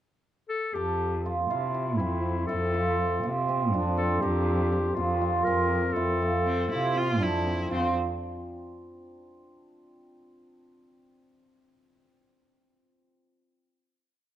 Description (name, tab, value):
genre	contemporary instrumental, chamber music in an uneven meter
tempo	242 BPM (eighths)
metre	7/8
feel	straight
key	F major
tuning	A4 = 440 Hz
part	warm clarinet	melody	0.5-7.9 s	E4 to Bb4	-30 LUFS	left 4 dB	none
part	cimbalom	arpeggios	0.8-7.9 s	C4 to Bb4	-29 LUFS	right 3 dB	none
part	muted cello	bass	0.8-7.9 s	F2 to C3	-29 LUFS	right 1 dB	none
part	rich viola	second line	6.5-7.9 s	C4 to F4	-32 LUFS	equal	none
room	light reverb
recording	close, detailed microphones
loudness	-25 LUFS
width	side -12 dB against mid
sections	0.0-0.8 pickup bar; 0.8-7.7 A section; 7.7-9.5 final chord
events	none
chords	0.0 N.C.; 0.8 Fmaj7; 4.2 Bbsus2/F; 6.0 Fmaj7; 7.7 F5